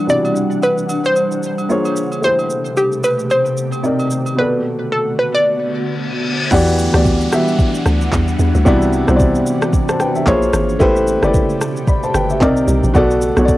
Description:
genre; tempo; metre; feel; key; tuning
amapiano; 112 BPM; 4/4; swing 58% on 16ths; E minor; A4 = 439 Hz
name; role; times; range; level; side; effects
dark baby grand piano; accompaniment; 0.0-13.6 s; B2 to B5; -16 LUFS; equal; cassette tape
ethereal airy pad; sustained chords; 0.0-13.6 s; B2 to F#5; -22 LUFS; equal; ensemble chorus, built-in reverb, cassette tape
hollow square pluck; melody; 0.1-6.2 s; G4 to D5; -18 LUFS; equal; chorus, cassette tape, tape echo
smooth R&B drum kit; drums; 0.1-13.6 s; crash cymbal, handclaps, kick drum, rim click, shaker; -18 LUFS; equal; cassette tape
agogo bells and woodblock; percussion; 0.2-4.4 s; none; -29 LUFS; right 3 dB; none
reverse cymbal and downlifter; sound effects; 5.7-10.8 s; none; -27 LUFS; left 2 dB; none
hollow log drum bass; bass; 6.5-13.6 s; G1 to E2; -17 LUFS; equal; none
room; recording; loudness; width
light reverb; home recording on cassette; -13 LUFS; side -16 dB against mid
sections
0.0-6.5 A section; 6.5-13.6 B section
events
reverse cymbal 5.7-6.5; drop 6.5-13.6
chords
0.1 Cmaj9#11; 1.7 A#m9; 2.2 Am9; 3.8 Cm7; 4.4 Bm7; 6.5 Em9; 8.7 Cmaj9#11; 10.3 A#m9; 10.8 Am9; 12.4 Cm7; 12.9 Bm7

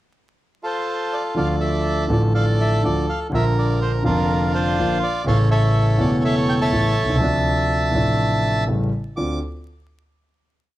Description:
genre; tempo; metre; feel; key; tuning
tango; 123 BPM; 4/4; rubato; D minor; A4 = 439 Hz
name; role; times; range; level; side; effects
bandoneon; melody; 0.6-9.4 s; D4 to D6; -22 LUFS; right 1 dB; plate reverb
dark concert grand piano; accompaniment; 1.3-9.4 s; E1 to F4; -19 LUFS; equal; none
room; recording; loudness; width
moderate club reverb, RT60 0.7 s; dark, warm production, vinyl crackle; -17 LUFS; side -15 dB against mid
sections
0.0-1.4 pickup bar; 1.4-9.2 A section; 9.2-10.8 final chord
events
none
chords
0.0 F; 1.4 Dm; 3.3 Bb; 5.3 A; 7.2 Dm7; 8.7 A7; 9.2 Dm7

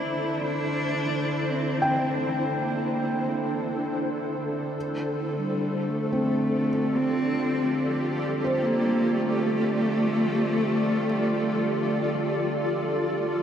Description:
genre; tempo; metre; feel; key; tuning
ambient; free time; none; none; unclear; A4 = 439 Hz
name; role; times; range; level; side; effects
dark cello; melody; 0.0-12.5 s; G3 to E4; -28 LUFS; equal; diffuse ambient delay
granular cloud pad; sustained chords; 0.0-13.4 s; D4 to D5; -28 LUFS; equal; built-in reverb
felt-muted upright piano; arpeggios; 0.0-13.4 s; C4 to G5; -30 LUFS; left 1 dB; diffuse ambient delay
analog drone; drone; 0.0-13.4 s; D3 to A4; -33 LUFS; right 1 dB; chorus
room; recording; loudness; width
wet huge ambient reverb, RT60 7.6 s; none; -23 LUFS; side -9 dB against mid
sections
0.0-13.4 A section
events
none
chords
0.0 C13; 4.8 Gsus2

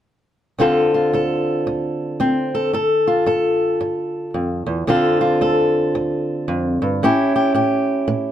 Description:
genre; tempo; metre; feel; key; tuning
blues; 112 BPM; 4/4; swing 63% on 8ths; D minor; A4 = 441 Hz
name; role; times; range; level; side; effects
fingerpicked old ladder-braced acoustic guitar; accompaniment; 0.6-8.3 s; D2 to A4; -16 LUFS; equal; none
room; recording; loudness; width
light reverb; close, detailed microphones; -16 LUFS; side -10 dB against mid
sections
0.6-8.3 A section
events
none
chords
0.6 Dm7; 2.7 Gsus2; 4.9 Dm7; 7.0 A7

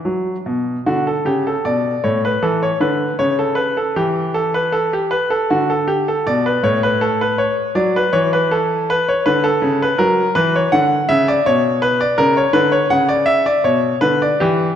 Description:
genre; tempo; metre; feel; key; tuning
classical, baroque-style suite movement for grand piano; 72-85 BPM; 3/4; rubato; D major; A4 = 440 Hz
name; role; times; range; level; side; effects
bright grand piano; solo; 0.0-14.8 s; A2 to F#5; -14 LUFS; equal; none
room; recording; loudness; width
moderate concert hall reverb, RT60 2.1 s; none; -14 LUFS; side -9 dB against mid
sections
0.9-14.8 A section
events
none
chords
0.0 Bm; 0.9 D5; 3.2 C#m7b5; 5.5 D5; 7.8 F#5; 11.5 N.C.; 12.2 F#7b13/C#; 13.6 Bm

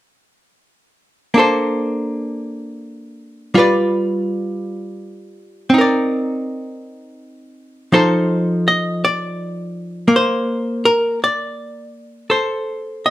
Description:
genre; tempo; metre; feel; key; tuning
jazz ballad; 55 BPM; 4/4; swing 66% on 8ths; Bb major; A4 = 440 Hz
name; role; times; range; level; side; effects
archtop guitar, miked and amplified; solo; 1.3-13.1 s; F3 to Eb5; -16 LUFS; equal; none
room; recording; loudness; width
light reverb; minimal, uncompressed stereo recording; -16 LUFS; side -15 dB against mid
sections
1.4-10.1 A section; 10.1-13.1 B section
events
none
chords
1.4 Bbmaj9; 3.5 G7; 5.7 Cm9; 7.9 F7; 10.1 Bbmaj9

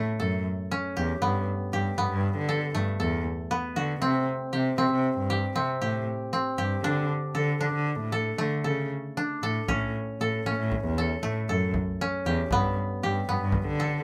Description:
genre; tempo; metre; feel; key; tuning
contemporary instrumental, chamber music in an uneven meter; 234 BPM (eighths); 11/8; straight; A mixolydian; A4 = 440 Hz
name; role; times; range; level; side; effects
koto; arpeggios; 0.0-14.0 s; A3 to A4; -31 LUFS; equal; none
clear cello; bass; 0.0-14.0 s; E2 to D3; -31 LUFS; equal; none
frame drum; percussion; 9.7-13.8 s; none; -35 LUFS; equal; none
room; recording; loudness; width
light reverb; close, detailed microphones; -28 LUFS; mono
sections
0.0-14.0 A section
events
none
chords
0.0 A; 1.2 Gadd9; 4.0 C5; 6.8 D5; 9.7 A; 12.5 Gadd9

